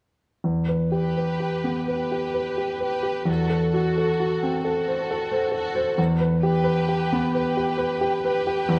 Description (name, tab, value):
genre	classical, romantic movement for piano and orchestra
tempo	66 BPM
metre	3/4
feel	rubato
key	E minor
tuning	A4 = 440 Hz
part	clear grand piano	melody	0.4-8.8 s	E2 to C5	-24 LUFS	equal	none
part	rich studio violin section	second line	0.9-8.8 s	F#4 to B4	-32 LUFS	equal	none
room	moderate scoring stage reverb, RT60 1.8 s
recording	close, detailed microphones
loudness	-24 LUFS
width	mono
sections	0.4-8.8 A section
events	none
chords	0.4 Em; 3.3 F#m7b5/E; 6.0 Em